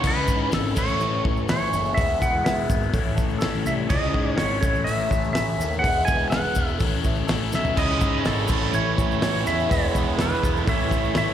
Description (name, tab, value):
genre	classic rock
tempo	124 BPM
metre	4/4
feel	straight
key	unclear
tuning	A4 = 440 Hz
part	clean lap steel guitar	melody	0.0-11.3 s	A4 to G#5	-26 LUFS	right 1 dB	slapback echo, plate reverb
part	overdriven reed electric piano	accompaniment	0.0-11.3 s	E4 to E5	-35 LUFS	right 3 dB	phaser, plate reverb
part	string machine, full ensemble	sustained chords	0.0-11.3 s	E4 to E5	-37 LUFS	left 1 dB	none
part	overdriven electric guitar	riff	0.0, 7.8-11.3 s	A2 to E4	-27 LUFS	right 13 dB	slapback echo
part	overdriven semi-hollow guitar	riff	0.0-11.3 s	A2 to E4	-29 LUFS	left 12 dB	phaser, slapback echo
part	fuzz picked electric bass	bass	0.0-11.3 s	E1 to G#2	-26 LUFS	equal	overdrive
part	damped 70s drum kit	drums	0.0-11.3 s	crash cymbal, hi-hat, kick drum, snare drum, toms	-26 LUFS	equal	none
part	tube shaker	percussion	0.0-11.3 s	none	-42 LUFS	right 3 dB	none
room	light reverb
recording	live gig heard through the venue's PA, recital hall reverb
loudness	-20 LUFS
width	side -10 dB against mid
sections	0.0-11.3 A section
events	drum fill 7.5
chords	0.0 C#madd9; 0.8 A; 2.0 E; 2.9 A; 3.9 C#madd9; 4.6 A; 5.8 E; 6.8 A; 7.8 C#madd9; 8.5 A; 9.7 E; 10.7 A